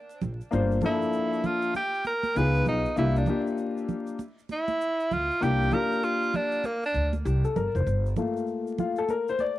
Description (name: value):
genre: hip hop, jazz-hop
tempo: 98 BPM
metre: 4/4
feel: swing 63% on 16ths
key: G dorian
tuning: A4 = 439 Hz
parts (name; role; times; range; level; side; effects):
- egg shaker and congas; percussion; 0.1-9.6 s; none; -35 LUFS; right 4 dB; none
- upright bass; bass; 0.2-8.1 s; F1 to D2; -26 LUFS; equal; none
- warm upright piano; accompaniment; 0.5-9.6 s; F3 to D5; -28 LUFS; left 4 dB; cassette tape
- breathy tenor saxophone; melody; 0.9-7.1 s; Bb3 to B4; -28 LUFS; right 2 dB; cassette tape, tape echo
room: light reverb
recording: home recording on cassette, vinyl crackle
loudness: -24 LUFS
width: side -15 dB against mid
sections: 0.0-7.9 A section; 7.9-9.6 A section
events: tenor saxophone solo 0.0-7.9; upright piano solo 7.9-9.6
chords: 0.0 Gm9 (rootless); 2.4 C#9; 3.0 C9sus4; 7.9 Gm9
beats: | 0.52 1.13 1.75 2.36 | 2.97 3.58 4.20 4.81 | 5.42 6.03 6.64 7.26 | 7.87 8.48 9.09